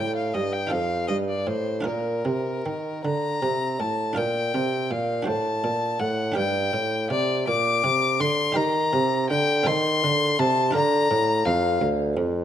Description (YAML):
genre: classical, baroque-style sonata movement with continuo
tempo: 50-57 BPM (dotted quarters)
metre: 6/8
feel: straight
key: Bb major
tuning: A4 = 440 Hz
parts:
  - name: warm violin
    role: melody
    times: 0.0-11.8 s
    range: Bb4 to D6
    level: -25 LUFS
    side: left 4 dB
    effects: none
  - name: buff-stop harpsichord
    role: accompaniment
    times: 0.0-12.4 s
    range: D2 to C5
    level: -30 LUFS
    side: right 3 dB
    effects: none
  - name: dark bassoon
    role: bass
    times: 0.0-12.4 s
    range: D2 to Eb3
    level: -25 LUFS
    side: right 2 dB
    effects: none
room: light reverb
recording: close, detailed microphones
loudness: -21 LUFS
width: side -10 dB against mid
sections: 0.0-4.2 A section; 4.2-12.4 B section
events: none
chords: 0.0 Eb; 0.7 F7; 1.9 Bb; 5.3 D7/A; 6.4 Gm; 8.6 Eb; 9.7 F7; 10.8 Bb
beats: 0.72 | 1.86 3.04 | 4.17 5.28 | 6.37 7.48 | 8.57 9.68 | 10.75 11.81